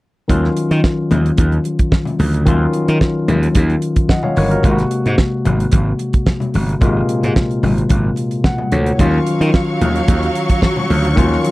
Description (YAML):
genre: disco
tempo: 110 BPM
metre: 4/4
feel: straight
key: Eb dorian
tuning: A4 = 441 Hz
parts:
  - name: barky tine electric piano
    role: accompaniment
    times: 0.3-11.5 s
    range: Bb2 to Gb5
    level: -18 LUFS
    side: left 2 dB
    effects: overdrive
  - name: gritty slap bass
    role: bass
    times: 0.3-11.4 s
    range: G1 to Eb3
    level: -16 LUFS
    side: right 1 dB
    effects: overdrive
  - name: damped 70s drum kit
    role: drums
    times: 0.3-11.5 s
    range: hi-hat, kick drum, snare drum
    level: -15 LUFS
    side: right 1 dB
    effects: none
  - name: congas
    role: percussion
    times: 0.3-11.5 s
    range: none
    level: -23 LUFS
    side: left 3 dB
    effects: none
  - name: clear studio string section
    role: sustained chords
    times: 9.0-11.5 s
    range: Gb3 to Db6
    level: -21 LUFS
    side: right 1 dB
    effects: none
room: little or no reverb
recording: dry, close 1970s-style studio recording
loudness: -13 LUFS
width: side -19 dB against mid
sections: 0.3-11.5 A section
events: tine electric piano fill 8.2-9.0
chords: 0.3 Ebm9; 4.6 Ab9; 9.0 Ebm9